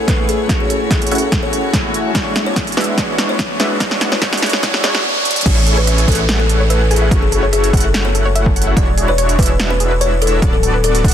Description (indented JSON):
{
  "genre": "future bass",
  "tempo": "145 BPM",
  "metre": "4/4",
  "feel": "half-time",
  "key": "A major",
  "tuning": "A4 = 442 Hz",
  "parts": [
    { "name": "clean electric guitar", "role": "accompaniment", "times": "0.0-5.0 s", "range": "G#3 to C#5", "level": "-29 LUFS", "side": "left 2 dB", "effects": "none" },
    { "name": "rich studio string section", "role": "sustained chords", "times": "0.0-5.0 s", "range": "G#3 to C#5", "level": "-29 LUFS", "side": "left 1 dB", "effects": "none" },
    { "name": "supersaw stab", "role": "riff", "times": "0.0-11.1 s", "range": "G#3 to F#5", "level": "-21 LUFS", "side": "right 1 dB", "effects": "cassette tape, sidechain pumping, low-pass filter" },
    { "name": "riser and downlifter", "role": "sound effects", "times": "1.5-8.8 s", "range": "none", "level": "-25 LUFS", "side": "right 1 dB", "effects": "none" },
    { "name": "buzzing kalimba", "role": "melody", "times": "0.1-11.0 s", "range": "G#4 to D5", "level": "-21 LUFS", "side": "left 3 dB", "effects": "sidechain pumping, dub echo" },
    { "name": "big-room dance drum kit", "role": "drums", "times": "0.1-11.1 s", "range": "crash cymbal, hi-hat, snare drum", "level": "-20 LUFS", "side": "right 1 dB", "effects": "overdrive" },
    { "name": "electronic kick drum", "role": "drums", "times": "0.1-11.1 s", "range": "none", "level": "-17 LUFS", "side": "equal", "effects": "overdrive" },
    { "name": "wide unison pluck", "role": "arpeggios", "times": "5.5-11.1 s", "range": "F#4 to G#5", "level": "-25 LUFS", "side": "left 2 dB", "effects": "sidechain pumping, dub echo" },
    { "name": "long sustained 808-style bass", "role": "bass", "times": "5.5-11.1 s", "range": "D1 to A1", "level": "-16 LUFS", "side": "equal", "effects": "sidechain pumping" }
  ],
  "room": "light reverb",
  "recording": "dense, heavily limited modern master, high-pass filter",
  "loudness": "-12 LUFS",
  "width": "side -10 dB against mid",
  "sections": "0.0-5.5 A section; 5.5-11.1 B section",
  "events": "build-up 0.0-5.5; drum fill 0.0-5.0, 5.3; filter sweep on supersaw synth 0.0-5.5; filter sweep 0.0-5.5; drop 5.5-11.1",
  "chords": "0.5 F#m7; 2.1 E13; 3.8 D6; 5.5 Amaj7; 7.1 F#m7; 8.8 E13; 10.4 D6",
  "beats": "0.08 | 0.49 0.91 1.32 1.74 | 2.15 2.56 2.98 3.39 | 3.80 4.22 4.63 5.05 | 5.46 5.87 6.29 6.70 | 7.12 7.53 7.94 8.36 | 8.77 9.18 9.60 10.01 | 10.43 10.84"
}